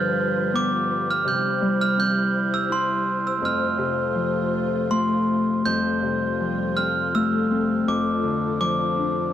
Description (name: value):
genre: children's music, lullaby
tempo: 82 BPM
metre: 3/4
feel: rubato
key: F major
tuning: A4 = 441 Hz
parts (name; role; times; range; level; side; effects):
- glockenspiel with hard plastic mallets; melody; 0.0-9.3 s; C6 to G6; -24 LUFS; right 3 dB; none
- Celtic harp; accompaniment; 0.0-9.3 s; F2 to E4; -24 LUFS; left 3 dB; none
- warm chamber string section; sustained chords; 0.0-9.3 s; F3 to C5; -28 LUFS; right 1 dB; none
room: moderate recital hall reverb, RT60 1.6 s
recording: dark, warm production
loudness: -20 LUFS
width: side -10 dB against mid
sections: 0.0-5.7 A section; 5.7-9.3 B section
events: none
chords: 0.0 G7; 1.3 C; 3.4 F; 5.7 Fadd9; 7.9 Dm/F